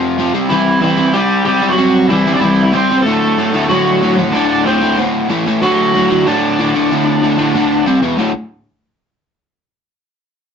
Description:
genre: punk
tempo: 187 BPM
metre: 4/4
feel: straight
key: D mixolydian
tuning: A4 = 440 Hz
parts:
  - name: overdriven electric guitar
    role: riff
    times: 0.0-8.3 s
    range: D2 to C4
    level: -13 LUFS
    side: left 1 dB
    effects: none
  - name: high-gain lead guitar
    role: melody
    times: 0.5-7.8 s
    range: E3 to D5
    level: -14 LUFS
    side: right 1 dB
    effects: distortion
room: moderate small room reverb, RT60 0.5 s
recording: rough rehearsal-room recording, nothing above 7.9 kHz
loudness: -11 LUFS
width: side -7 dB against mid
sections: 0.0-8.2 A section; 8.2-9.5 B section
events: none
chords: 0.3 C; 3.1 D; 5.3 A5; 5.6 D; 7.9 C5; 8.0 E5; 8.2 D5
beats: 0.17 | 0.49 0.81 1.14 1.46 | 1.78 2.10 2.42 2.74 | 3.06 3.38 3.70 4.02 | 4.34 4.66 4.98 5.30 | 5.62 5.94 6.26 6.58 | 6.90 7.22 7.54 7.87 | 8.19

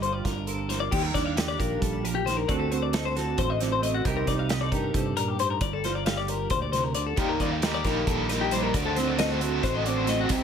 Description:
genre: math rock and midwest emo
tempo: 269 BPM (eighths)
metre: 7/8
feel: straight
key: unclear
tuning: A4 = 439 Hz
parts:
  - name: mellow electric guitar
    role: accompaniment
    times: 0.0-10.4 s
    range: G2 to Bb4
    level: -30 LUFS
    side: right 8 dB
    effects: ensemble chorus
  - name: twelve-string electric guitar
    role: arpeggios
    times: 0.0-10.4 s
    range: F#4 to F5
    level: -29 LUFS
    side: left 9 dB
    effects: tape echo, plate reverb
  - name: fingered electric bass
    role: bass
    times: 0.0-10.4 s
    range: G1 to G2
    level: -32 LUFS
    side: equal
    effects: none
  - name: loose indie drum kit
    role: drums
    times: 0.0-10.4 s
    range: crash cymbal, hi-hat, kick drum, snare drum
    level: -31 LUFS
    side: right 1 dB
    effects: none
  - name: biting overdriven guitar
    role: riff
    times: 7.2-10.4 s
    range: C3 to F#4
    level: -29 LUFS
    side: right 1 dB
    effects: tremolo
room: light reverb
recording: none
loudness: -24 LUFS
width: side -7 dB against mid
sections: 0.9-10.4 A section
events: none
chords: 0.0 Gm7; 0.9 Ebmaj9; 2.5 D7b9; 4.0 Cm9; 5.6 Gm9; 7.2 Ebmaj9; 8.7 D7b9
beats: 0.02 0.25 0.47 0.69 | 0.92 1.14 1.36 1.59 1.81 2.04 2.26 | 2.48 2.71 2.93 3.15 3.37 3.60 3.82 | 4.04 4.27 4.49 4.71 4.94 5.16 5.38 | 5.61 5.83 6.05 6.28 6.50 6.72 6.95 | 7.17 7.39 7.62 7.84 8.06 8.29 8.51 | 8.73 8.96 9.18 9.41 9.63 9.85 10.08 | 10.30

